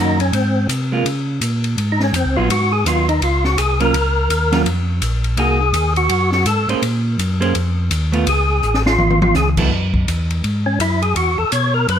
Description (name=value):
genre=soul jazz organ trio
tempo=166 BPM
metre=4/4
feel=swing 63% on 8ths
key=unclear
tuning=A4 = 439 Hz
part: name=percussive tonewheel organ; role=melody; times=0.0-12.0 s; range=C4 to C#5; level=-18 LUFS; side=left 1 dB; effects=slow rotary speaker, overdrive, chorus vibrato
part: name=vintage hollow-body jazz guitar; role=accompaniment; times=0.0-9.7 s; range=Eb3 to C5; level=-22 LUFS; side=right 4 dB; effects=none
part: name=mellow tonewheel organ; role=bass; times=0.0-12.0 s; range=Ab1 to Db3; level=-18 LUFS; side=equal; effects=overdrive, chorus vibrato, slow rotary speaker
part: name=open jazz drum kit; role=drums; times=0.2-12.0 s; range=crash cymbal, hi-hat, kick drum, ride cymbal, snare drum, toms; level=-23 LUFS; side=left 1 dB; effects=none
room=light reverb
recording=none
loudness=-15 LUFS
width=side -9 dB against mid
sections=0.0-9.7 A section; 9.7-12.0 A section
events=tonewheel organ solo 0.0-12.0; drum fill 8.6-9.3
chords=0.3 Ab; 1.1 Db6; 2.5 Abm7; 3.2 Db; 3.9 Gbmaj7 (rootless); 5.4 Cm7b5; 6.1 Gbmadd9; 6.8 Bb5; 8.3 Db(b13); 9.7 F#sus2; 11.2 Esus2